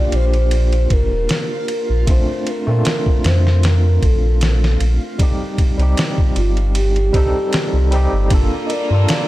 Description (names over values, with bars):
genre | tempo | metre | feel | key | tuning
trip hop | 77 BPM | 4/4 | swing 54% on 16ths | unclear | A4 = 440 Hz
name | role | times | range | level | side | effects
pure breathy sine lead | melody | 0.0-9.3 s | F4 to Eb5 | -24 LUFS | equal | chorus, vintage 12-bit sampler grit, tape echo
overdriven tine electric piano | accompaniment | 0.0-9.3 s | G3 to A4 | -23 LUFS | equal | tremolo, tape echo
backwards swelling texture | texture | 0.0-8.3 s | F4 | -36 LUFS | right 2 dB | built-in reverb
warm sub bass | bass | 0.1-9.1 s | Eb1 to Bb2 | -15 LUFS | equal | none
trip hop sampler-style drum kit | drums | 0.1-9.3 s | kick drum, ride cymbal, snare drum | -19 LUFS | equal | none
clear studio violin section | sustained chords | 8.3-9.3 s | G3 to F4 | -27 LUFS | right 1 dB | none
music box | arpeggios | 8.3-9.3 s | G4 to Bb4 | -30 LUFS | left 2 dB | tape echo
room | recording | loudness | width
little or no reverb | none | -14 LUFS | side -16 dB against mid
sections
0.0-8.3 A section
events
none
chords
0.0 Ebmaj7 (rootless); 2.1 Bbmaj7; 5.2 Cm; 8.3 Gm7